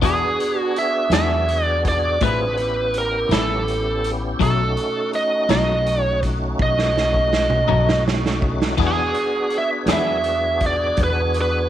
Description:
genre	slow blues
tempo	55 BPM (dotted quarters)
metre	12/8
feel	straight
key	unclear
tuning	A4 = 441 Hz
part	clean electric guitar	accompaniment	0.0-10.1 s	A2 to G#4	-24 LUFS	left 12 dB	tremolo
part	tonewheel organ	sustained chords	0.0-11.7 s	A3 to G#4	-26 LUFS	left 1 dB	chorus vibrato, slow rotary speaker
part	upright bass	bass	0.0-11.7 s	A1 to E2	-24 LUFS	left 1 dB	none
part	raw garage drum kit	drums	0.0-11.5 s	crash cymbal, hi-hat, kick drum, snare drum, toms	-24 LUFS	right 2 dB	none
part	biting lead guitar	melody	0.1-11.7 s	G#4 to E5	-21 LUFS	right 2 dB	overdrive
room	light reverb, small room ambience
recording	1960s-style stereo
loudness	-17 LUFS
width	side -11 dB against mid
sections	0.0-8.8 A section; 8.8-11.7 A section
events	drum fill 6.6-8.8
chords	0.0 E7; 2.2 A7; 4.4 B7; 8.8 E7

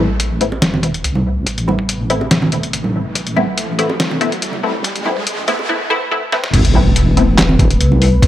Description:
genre	deep dubstep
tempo	142 BPM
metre	4/4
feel	half-time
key	A minor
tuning	A4 = 440 Hz
part	dark analog pad	sustained chords	0.0-8.3 s	A3 to B4	-26 LUFS	left 2 dB	chorus, vintage 12-bit sampler grit
part	filtered dub chord stab	stabs	0.0-7.3 s	A3 to E4	-19 LUFS	left 2 dB	phaser, analog chorus, dub echo
part	deep soft wobble bass	bass	0.0-8.3 s	E1 to C2	-17 LUFS	equal	chorus
part	riser and impact	sound effects	0.0-8.2 s	none	-22 LUFS	equal	none
part	trip hop sampler-style drum kit	drums	0.2-8.3 s	crash cymbal, handclaps, hi-hat, snare drum	-18 LUFS	left 1 dB	none
part	electronic kick drum	drums	0.4-8.3 s	none	-15 LUFS	equal	high-pass filter on kick
part	bongos and congas	percussion	0.5-8.3 s	none	-21 LUFS	right 2 dB	dub echo
room	light reverb, digital ambience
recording	high-pass filter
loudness	-13 LUFS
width	side -12 dB against mid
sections	0.0-6.5 A section; 6.5-8.3 B section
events	build-up 0.0-6.5; riser 0.0-5.7; filter sweep 0.0-6.5; drum fill 6.3; drop 6.5-8.3; impact 6.5-8.2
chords	0.0 Amadd9

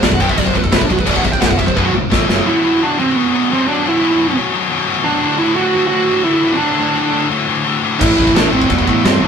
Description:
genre	heavy metal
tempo	173 BPM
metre	4/4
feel	straight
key	B phrygian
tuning	A4 = 440 Hz
part	high-gain lead guitar	melody	0.0-9.3 s	B3 to G5	-16 LUFS	right 3 dB	distortion
part	heavy high-gain guitar	riff	0.0-2.4, 8.0-9.3 s	B1 to A3	-23 LUFS	right 6 dB	distortion
part	scooped high-gain guitar	riff	0.0-9.3 s	B1 to A3	-16 LUFS	left 5 dB	distortion
part	fuzz fingered electric bass	bass	0.0-2.4, 8.0-9.3 s	B0 to A2	-21 LUFS	equal	overdrive
part	modern studio drum kit	drums	0.0-2.4, 8.0-9.1 s	china cymbal, crash cymbal, kick drum, snare drum, toms	-15 LUFS	equal	none
room	moderate stone room reverb, RT60 1.1 s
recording	rough rehearsal-room recording, lossy compression artefacts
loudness	-12 LUFS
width	side -7 dB against mid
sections	0.0-2.5 A section; 2.5-9.3 B section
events	lead electric guitar solo 0.0-2.5; drum fill 1.8-2.5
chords	0.0 B5; 2.1 A5; 2.3 F#5; 2.5 B5; 5.2 D; 8.0 A5

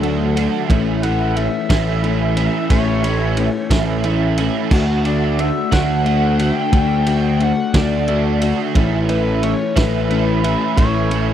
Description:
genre	indie rock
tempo	60 BPM (dotted quarters)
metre	6/8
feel	straight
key	D major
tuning	A4 = 440 Hz
part	overdriven synth lead	melody	0.0-11.3 s	A4 to G5	-24 LUFS	left 2 dB	distortion, phaser, tape echo
part	electric guitar through a small old amp	riff	0.0-11.3 s	E3 to F#4	-22 LUFS	left 10 dB	spring reverb
part	overdriven electric guitar	riff	0.0-11.3 s	D3 to F#4	-22 LUFS	right 10 dB	ensemble chorus, tape echo
part	fuzz picked electric bass	bass	0.0-11.3 s	A1 to D2	-19 LUFS	right 1 dB	overdrive
part	loose indie drum kit	drums	0.0-11.3 s	crash cymbal, kick drum, ride cymbal, snare drum	-22 LUFS	right 1 dB	none
room	little or no reverb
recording	dry, close 1970s-style studio recording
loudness	-15 LUFS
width	side -10 dB against mid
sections	0.0-11.3 A section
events	none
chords	0.0 D; 0.7 A; 4.7 D; 8.7 A

